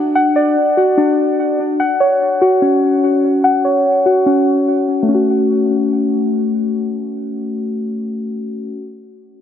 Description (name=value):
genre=hip hop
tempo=146 BPM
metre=4/4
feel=half-time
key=F# minor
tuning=A4 = 445 Hz
part: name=muted felt-like synth keys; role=arpeggios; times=0.0-8.8 s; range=A3 to F#5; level=-13 LUFS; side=left 1 dB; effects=chorus, low-pass filter, ping-pong delay
room=moderate huge ambient reverb, RT60 4.0 s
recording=dense, heavily limited modern master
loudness=-13 LUFS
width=side -9 dB against mid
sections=0.0-5.1 A section; 5.1-8.4 B section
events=filter sweep on synth keys 0.0-5.1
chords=0.0 D; 1.8 F#5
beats=| 0.15 0.56 0.97 1.39 | 1.80 2.21 2.62 3.03 | 3.44 3.85 4.26 4.67 | 5.08 5.50 5.91 6.32 | 6.73 7.14 7.55 7.96